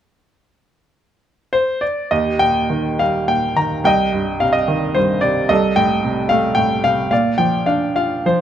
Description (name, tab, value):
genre	classical, lyrical solo piano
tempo	99-114 BPM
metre	3/4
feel	rubato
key	Eb major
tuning	A4 = 437 Hz
part	bright baby grand piano	solo	1.5-8.4 s	C2 to Bb5	-15 LUFS	equal	none
room	light reverb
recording	close, detailed microphones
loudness	-15 LUFS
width	side -10 dB against mid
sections	0.4-2.1 A section; 2.1-8.4 B section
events	none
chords	0.4 N.C.; 2.1 Eb; 3.8 Cm; 5.5 Cm6; 7.1 Bb